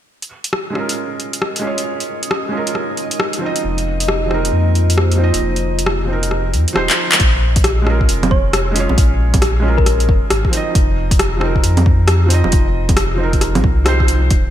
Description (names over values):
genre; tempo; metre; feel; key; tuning
future garage; 135 BPM; 4/4; swing 63% on 16ths; Bb minor; A4 = 440 Hz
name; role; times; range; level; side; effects
dark analog pad; sustained chords; 1.3-7.2, 14.3-14.5 s; Ab3 to Db5; -27 LUFS; equal; chorus, phaser, sidechain pumping
backwards swelling texture; texture; 1.2-7.2 s; Eb5; -29 LUFS; equal; built-in reverb, analog chorus
deep house drum kit; drums; 0.2-14.4 s; bongos, handclaps, hi-hat, rim click; -19 LUFS; equal; overdrive, small room ambience, gated reverb
felt-muted upright piano; accompaniment; 0.7-14.3 s; F3 to Eb5; -21 LUFS; right 2 dB; vintage 12-bit sampler grit, sidechain pumping, low-pass filter, digital delay
warm sub bass; bass; 3.6-14.5 s; Eb1 to F2; -16 LUFS; equal; sidechain pumping
electronic kick drum; drums; 7.2-14.4 s; none; -15 LUFS; equal; overdrive, small room ambience
thumb-piano-like synth pluck; melody; 8.3-10.1 s; Bb4 to Db5; -24 LUFS; left 3 dB; chorus, digital delay
room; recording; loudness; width
light reverb, digital ambience; bright 1980s-style digital production; -13 LUFS; side -11 dB against mid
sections
0.1-7.2 A section; 7.2-14.5 B section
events
fade-in on analog synth pad 0.1-7.2; filter sweep on felt piano 0.1-7.2; drum fill 6.9-7.2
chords
0.1 Bbm7; 3.6 F7sus4; 7.2 Bbm7; 10.8 F7sus4